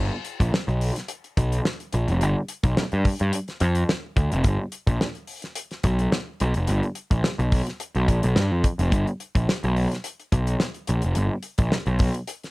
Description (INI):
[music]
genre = funk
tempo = 107 BPM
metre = 4/4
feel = straight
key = G mixolydian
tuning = A4 = 440 Hz
[part]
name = fuzz picked electric bass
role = bass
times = 0.0-12.1 s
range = F1 to G2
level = -22 LUFS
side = equal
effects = overdrive
[part]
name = damped 70s drum kit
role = drums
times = 0.2-12.5 s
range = hi-hat, kick drum, snare drum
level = -24 LUFS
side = equal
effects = none
[sound]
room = little or no reverb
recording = none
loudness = -21 LUFS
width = side -23 dB against mid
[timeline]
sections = 0.0-12.5 A section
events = none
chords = none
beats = 0.54 1.10 1.66 | 2.21 2.77 3.33 3.89 | 4.45 5.01 5.57 6.12 | 6.68 7.24 7.80 8.36 | 8.92 9.48 10.04 10.61 | 11.17 11.73 12.29